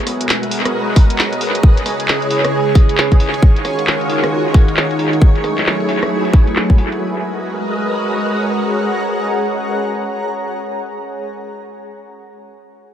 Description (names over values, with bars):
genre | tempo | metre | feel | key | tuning
UK garage, two-step garage | 134 BPM | 4/4 | swing 62% on 16ths | G# minor | A4 = 440 Hz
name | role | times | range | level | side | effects
soft string machine | sustained chords | 0.0-11.3 s | C#3 to D#5 | -20 LUFS | equal | ensemble chorus, sidechain pumping
granular cloud pad | texture | 0.0-11.3 s | B3 to A#5 | -21 LUFS | right 1 dB | built-in reverb, sidechain pumping
garage drum kit | drums | 0.1-7.0 s | handclaps, hi-hat, rim click | -19 LUFS | equal | low-pass filter on hats, low-pass filter on snare, low-pass filter on room, tape echo
electronic kick drum | drums | 1.0-6.8 s | none | -9 LUFS | equal | none
room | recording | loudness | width
light reverb | echo-heavy mix | -13 LUFS | side -10 dB against mid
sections
0.0-7.0 A section; 7.0-10.6 B section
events
none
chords
0.0 G#m9; 1.6 C#m9; 3.2 D#m9; 5.2 F#m9; 7.0 G#m9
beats
0.29 0.74 1.19 | 1.63 2.08 2.53 2.98 | 3.42 3.87 4.32 4.77 | 5.21 5.66 6.11 6.56 | 7.01 7.45 7.90 8.35 | 8.80 9.24 9.69 10.14